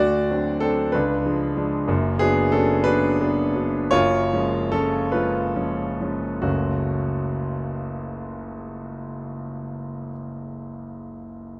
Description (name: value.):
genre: classical, romantic character piece for solo piano.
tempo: 43-65 BPM (dotted quarters).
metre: 6/8.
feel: rubato.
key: F# minor.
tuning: A4 = 440 Hz.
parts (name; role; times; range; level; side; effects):
warm concert grand piano; solo; 0.0-11.6 s; F#1 to D5; -24 LUFS; equal; none.
room: moderate recital hall reverb, RT60 1.7 s.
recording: dark, warm production.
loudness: -23 LUFS.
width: mono.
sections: 0.0-6.4 A section; 6.4-11.2 B section.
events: slowing down 0.9-6.4.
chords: 0.0 D7; 0.9 C#7b9; 1.9 Bm/F#; 3.9 C#7/F#; 6.4 F#m.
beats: 0.95 | 1.90 2.88 | 3.93 5.13 | 6.44 7.64 | 8.82 10.04.